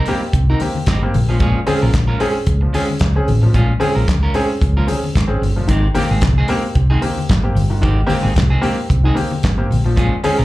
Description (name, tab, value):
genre	disco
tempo	112 BPM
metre	4/4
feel	swing 56% on 16ths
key	Ab major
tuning	A4 = 440 Hz
part	clean electric guitar	accompaniment	0.0-10.4 s	Eb3 to Bb4	-24 LUFS	right 3 dB	slapback echo
part	clear grand piano	accompaniment	0.1-10.4 s	Ab2 to Ab4	-20 LUFS	left 1 dB	slapback echo
part	damped 70s drum kit	drums	0.1-10.4 s	handclaps, hi-hat, kick drum, snare drum	-20 LUFS	equal	none
part	congas	percussion	0.1-10.4 s	none	-25 LUFS	left 4 dB	none
part	hollow-body short-scale fingered electric bass	bass	0.3-10.4 s	G1 to Db2	-15 LUFS	equal	none
room	light reverb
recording	live gig heard through the venue's PA, club reverb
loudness	-14 LUFS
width	side -17 dB against mid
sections	0.0-10.4 A section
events	none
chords	0.0 Abmaj7 (rootless); 1.1 Bbm7; 5.7 Abmaj7; 9.7 Bbm7